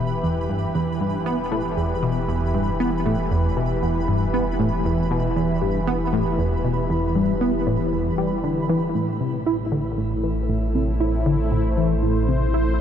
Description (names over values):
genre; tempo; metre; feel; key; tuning
ambient, sequencer-driven space music; 117 BPM; 4/4; straight; E minor, A minor from 9.0 s; A4 = 440 Hz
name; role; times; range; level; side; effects
sweeping resonant pad; sustained chords; 0.0-12.8 s; A2 to C5; -25 LUFS; equal; chorus, shimmer reverb
tight sequenced synth; riff; 0.0-12.6 s; E2 to E4; -22 LUFS; equal; chorus, phaser, ping-pong delay
warm sub bass; bass; 0.0-12.8 s; E1 to A1; -27 LUFS; equal; none
pulsing gated texture; texture; 0.0-9.0 s; B5; -35 LUFS; right 2 dB; chorus, built-in reverb, shimmer reverb
room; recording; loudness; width
wet huge ambient reverb, RT60 8.0 s; dark, warm production; -20 LUFS; side -9 dB against mid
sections
0.0-9.0 A section; 9.0-12.8 B section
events
fade-in on analog synth pad 0.0-9.0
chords
0.0 Em; 9.0 Am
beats
0.24 | 0.75 1.26 1.77 2.29 | 2.80 3.31 3.83 4.34 | 4.85 5.36 5.88 6.39 | 6.90 7.42 7.93 8.44 | 8.95 9.47 9.98 10.49 | 11.01 11.52 12.03 12.54